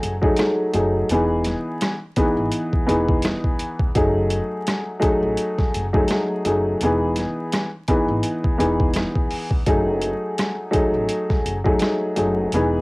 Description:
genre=hip hop, boom-bap hip-hop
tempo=84 BPM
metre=4/4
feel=swing 55% on 16ths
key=F# dorian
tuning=A4 = 440 Hz
part: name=warm upright piano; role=accompaniment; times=0.0-12.8 s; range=E3 to G#4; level=-20 LUFS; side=equal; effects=high-pass filter, low-pass filter, cassette tape
part: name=upright bass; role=bass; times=0.0-12.8 s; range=E1 to A1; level=-26 LUFS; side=equal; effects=none
part: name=boom bap sampler-style drum kit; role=drums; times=0.0-12.7 s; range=hi-hat, kick drum, rim click, snare drum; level=-22 LUFS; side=equal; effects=cassette tape
room=light reverb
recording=home recording on cassette, vinyl crackle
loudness=-18 LUFS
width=side -24 dB against mid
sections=0.0-12.8 A section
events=none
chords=0.0 F#m69; 1.1 Emaj7; 4.0 F#m69; 6.8 Emaj7; 9.7 F#m69

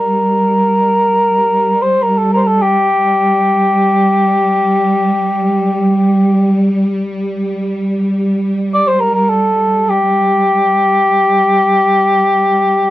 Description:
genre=caucasian folk, Caucasian lament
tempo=free time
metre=none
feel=none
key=G minor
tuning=A4 = 440 Hz
part: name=dark cor anglais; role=melody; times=0.0-12.9 s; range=G4 to D5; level=-12 LUFS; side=left 1 dB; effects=none
part: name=clear studio cello section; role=drone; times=0.0-12.9 s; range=G3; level=-16 LUFS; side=right 1 dB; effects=none
room=light reverb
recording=dry, close 1970s-style studio recording, faint mains hum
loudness=-11 LUFS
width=side -14 dB against mid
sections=0.0-12.9 A section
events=none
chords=none

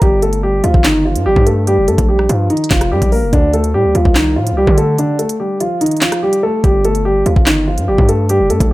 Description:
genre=hip hop, drill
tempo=145 BPM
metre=4/4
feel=half-time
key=G minor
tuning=A4 = 440 Hz
part: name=dark concert grand piano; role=melody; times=0.0-8.7 s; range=D3 to Bb4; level=-14 LUFS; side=equal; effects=low-pass filter
part: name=distorted 808-style bass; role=bass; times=0.0-8.7 s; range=F1 to D3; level=-16 LUFS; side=equal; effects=distortion
part: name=drill drum kit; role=drums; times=0.0-8.7 s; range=handclaps, hi-hat, kick drum, rim click, snare drum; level=-15 LUFS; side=equal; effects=none
room=little or no reverb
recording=none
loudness=-11 LUFS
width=side -18 dB against mid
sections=0.0-8.7 A section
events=break 5.0-6.6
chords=0.0 Gm7; 3.3 Dm7; 6.6 G7(no3)

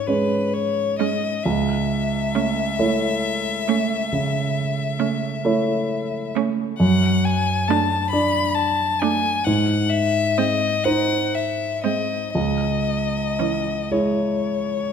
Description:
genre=classical, slow romantic movement for piano quintet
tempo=38-46 BPM (dotted quarters)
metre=12/8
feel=rubato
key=C# minor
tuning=A4 = 443 Hz
part: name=rich violin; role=melody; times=0.0-14.9 s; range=B4 to B5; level=-24 LUFS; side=left 6 dB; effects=none
part: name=warm concert grand piano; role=accompaniment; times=0.0-14.9 s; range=C#2 to D5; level=-22 LUFS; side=right 1 dB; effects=none
part: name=bright cello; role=second line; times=1.0-13.8 s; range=E3 to A3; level=-26 LUFS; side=right 8 dB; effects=none
part: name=clear viola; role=accompaniment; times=1.0-13.8 s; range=B#3 to D4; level=-28 LUFS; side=right 4 dB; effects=none
room=wet scoring stage reverb, RT60 1.8 s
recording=none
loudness=-19 LUFS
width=side -7 dB against mid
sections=0.0-14.9 A section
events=none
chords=0.0 C#5; 1.4 A/C#; 6.8 D/F#; 9.5 G#; 12.4 C#m

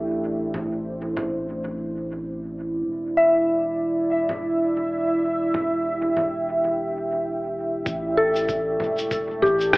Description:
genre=ambient dub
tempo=96 BPM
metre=4/4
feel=swing 58% on 16ths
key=A minor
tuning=A4 = 442 Hz
part: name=deep dark ambient pad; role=sustained chords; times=0.0-9.8 s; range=A3 to G5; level=-24 LUFS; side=right 1 dB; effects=chorus, built-in reverb
part: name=soft dub sub bass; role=bass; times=0.0-9.8 s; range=E1 to A1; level=-37 LUFS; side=equal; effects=none
part: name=electronic congas, shaker and rim click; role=drums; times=0.5-9.8 s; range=none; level=-27 LUFS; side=equal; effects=dub echo
part: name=soft synth bell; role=arpeggios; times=3.2-9.8 s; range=G4 to E5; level=-22 LUFS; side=left 1 dB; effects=chorus, phaser, dub echo
part: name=electronic kick drum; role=drums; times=7.9-9.8 s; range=none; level=-32 LUFS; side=equal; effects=none
room=moderate spring reverb, RT60 1.7 s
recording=AM radio sound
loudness=-21 LUFS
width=side -22 dB against mid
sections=0.0-7.9 A section; 7.9-9.8 B section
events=none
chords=0.0 Am; 2.9 Em7; 7.9 A7(no3)

